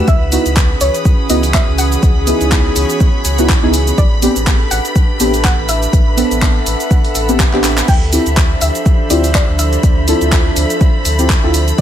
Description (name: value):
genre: deep house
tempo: 123 BPM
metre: 4/4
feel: swing 56% on 16ths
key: unclear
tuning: A4 = 440 Hz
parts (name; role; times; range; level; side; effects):
- airy breathy pad; sustained chords; 0.0-11.8 s; E3 to D#6; -24 LUFS; equal; chorus, sidechain pumping
- deep mellow chord stab; stabs; 0.0-11.5 s; B3 to A4; -17 LUFS; equal; chorus, tape echo
- airy breathy pad; texture; 0.0-11.8 s; C#4 to D#6; -23 LUFS; right 1 dB; chorus, sidechain pumping
- string machine, violins; texture; 0.0-11.8 s; B5; -25 LUFS; equal; ensemble chorus, sidechain pumping
- soft round pluck; melody; 0.1-11.8 s; C#5 to G5; -22 LUFS; left 1 dB; lush chorus, cassette tape, ping-pong delay
- sub bass with octave; bass; 0.1-11.8 s; A1 to D2; -17 LUFS; equal; sidechain pumping
- deep house drum kit; drums; 0.1-11.8 s; cabasa, crash cymbal, handclaps, hi-hat; -19 LUFS; equal; none
- electronic kick drum; drums; 0.1-11.8 s; none; -12 LUFS; equal; none
room: light reverb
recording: none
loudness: -10 LUFS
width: side -10 dB against mid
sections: 0.0-11.8 A section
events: drum fill 7.6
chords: 0.1 C#m11; 4.0 Am11; 7.9 Dm11